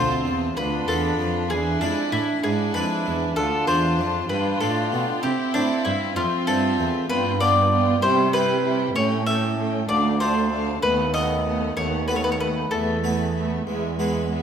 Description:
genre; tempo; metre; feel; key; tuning
classical, baroque-style concerto movement with solo episodes; 64 BPM (dotted quarters); 6/8; straight; unclear; A4 = 440 Hz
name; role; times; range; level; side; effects
mandolin; melody; 0.0-13.6 s; D4 to E5; -24 LUFS; left 2 dB; none
rich chamber violin section; melody; 0.0-14.4 s; E5 to B5; -36 LUFS; left 6 dB; none
rich chamber violin section; second line; 0.0-14.4 s; B3 to F4; -30 LUFS; left 2 dB; none
harpsichord; accompaniment; 0.0-14.4 s; D2 to G4; -30 LUFS; equal; none
warm studio viola section; accompaniment; 0.0-14.4 s; G3 to D4; -27 LUFS; right 2 dB; none
warm chamber cello section; bass; 0.0-14.4 s; D2 to C3; -27 LUFS; right 4 dB; none
room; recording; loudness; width
wet recital hall reverb, RT60 1.7 s; minimal, uncompressed stereo recording; -20 LUFS; side -8 dB against mid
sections
0.0-14.4 A section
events
none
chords
0.0 F; 0.6 Bm7b5/D; 1.5 E7; 3.4 Dm; 4.3 G7; 5.2 C; 6.2 Fmaj7; 7.1 G7; 8.0 C; 9.0 A7; 9.9 Dm; 10.8 B7/D#; 12.7 Esus4; 13.7 E

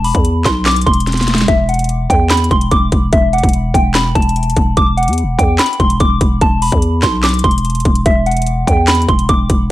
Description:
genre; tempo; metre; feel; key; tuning
hip hop, trap; 146 BPM; 4/4; half-time; E minor; A4 = 440 Hz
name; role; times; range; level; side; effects
soft synth bell; melody; 0.0-9.5 s; E5 to D6; -16 LUFS; equal; chorus, low-pass filter, tape echo
growling 808-style bass; bass; 0.0-9.7 s; E1 to E2; -15 LUFS; equal; none
trap drum kit; drums; 0.0-9.6 s; handclaps, hi-hat, kick drum, snare drum; -15 LUFS; equal; none
room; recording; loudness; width
digital ambience; none; -11 LUFS; side -15 dB against mid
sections
0.0-9.7 A section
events
drum fill 1.1-1.5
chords
0.0 Cmaj7/E; 1.5 Esus2; 6.4 Cmaj7/E; 8.1 Esus2

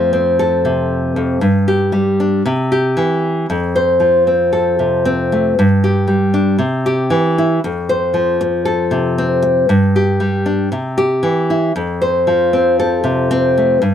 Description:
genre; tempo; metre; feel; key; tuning
highlife; 116 BPM; 4/4; straight; F major; A4 = 440 Hz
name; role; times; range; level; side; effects
nylon-string guitar; solo; 0.0-13.9 s; F2 to C5; -13 LUFS; equal; none
room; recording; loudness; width
moderate booth ambience, RT60 0.2 s; dry, close 1970s-style studio recording; -13 LUFS; side -9 dB against mid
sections
0.0-13.9 A section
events
none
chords
0.0 F; 1.4 G5; 2.4 C; 3.5 F; 5.6 G5; 6.6 C; 7.6 F; 9.7 G5; 10.7 C; 11.7 F

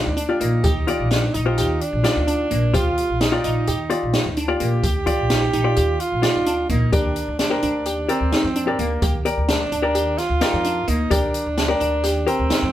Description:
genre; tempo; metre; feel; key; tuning
progressive instrumental, band music in an uneven meter; 258 BPM (eighths); 9/8; straight; Eb major; A4 = 443 Hz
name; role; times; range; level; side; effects
breathy alto saxophone; second line; 0.0-12.7 s; Bb3 to G4; -24 LUFS; right 3 dB; none
hollow-body jazz guitar; accompaniment; 0.0-12.6 s; F4 to D5; -24 LUFS; left 3 dB; none
glassy wavetable pluck; arpeggios; 0.0-12.7 s; Bb3 to G4; -26 LUFS; equal; chorus
upright bass; bass; 0.1-12.7 s; Bb1 to F2; -24 LUFS; equal; none
open jazz drum kit; drums; 0.2-12.6 s; hi-hat, kick drum, snare drum; -24 LUFS; equal; none
room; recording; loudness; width
light reverb; band playing live in one room; -18 LUFS; side -12 dB against mid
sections
0.0-12.7 A section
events
none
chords
0.0 Ebmaj7; 6.9 Gm

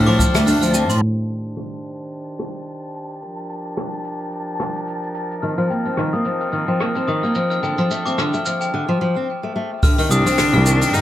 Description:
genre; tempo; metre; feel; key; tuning
folktronica; 109 BPM; 4/4; swing 56% on 16ths; unclear; A4 = 440 Hz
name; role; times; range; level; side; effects
glockenspiel with brass mallets; second line; 0.0-1.0, 5.4-11.0 s; G5 to F6; -24 LUFS; left 2 dB; digital delay, plate reverb
dark string quartet; sustained chords; 0.0-11.0 s; Eb3 to C5; -29 LUFS; right 1 dB; plate reverb
fingerpicked steel-string acoustic guitar; arpeggios; 0.0-0.9, 5.4-11.0 s; D3 to D4; -20 LUFS; left 1 dB; tape echo, plate reverb
muted cello; bass; 0.0-1.0, 10.1-11.0 s; C2 to A2; -18 LUFS; equal; none
flickering grainy texture; texture; 0.0-11.0 s; D4 to A6; -34 LUFS; left 1 dB; built-in reverb, plate reverb
jazz brush drum kit; drums; 0.1-11.0 s; hi-hat, rim click, shaker; -26 LUFS; right 1 dB; low-pass filter on hats, low-pass filter on snare, low-pass filter on perc, low-pass filter on room
kick drum; drums; 0.2-0.3, 9.8-10.0 s; none; -18 LUFS; equal; none
clear cello; melody; 10.1-11.0 s; D4 to Eb4; -18 LUFS; left 2 dB; plate reverb
room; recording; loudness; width
moderate studio reverb, RT60 0.7 s; low-pass filter; -17 LUFS; side -12 dB against mid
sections
0.0-1.0 A section; 1.0-9.8 B section; 9.8-11.0 C section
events
filter sweep 1.0-9.8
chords
0.0 Dm7; 1.0 Cmadd9; 3.2 Gm7; 5.4 F7sus4; 7.6 Dm7; 9.8 Cmadd9

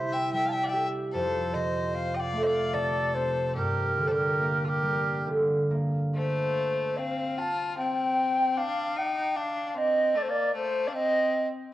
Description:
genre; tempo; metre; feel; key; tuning
celtic folk, Celtic slow air; 74 BPM; 3/4; rubato; G minor; A4 = 438 Hz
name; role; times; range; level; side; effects
baroque flute; melody; 0.0-11.5 s; A4 to A5; -27 LUFS; equal; cassette tape
bright fiddle; second line; 0.0-11.5 s; A3 to F5; -34 LUFS; left 3 dB; cassette tape
concert harp; accompaniment; 0.0-8.9 s; F2 to G4; -29 LUFS; right 1 dB; cassette tape
room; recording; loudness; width
wet spring reverb, RT60 1.6 s, studio ambience; home recording on cassette; -25 LUFS; side -14 dB against mid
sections
0.0-6.1 A section; 6.1-11.7 B section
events
none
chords
0.0 C; 1.1 F; 3.6 Gm; 6.1 N.C.

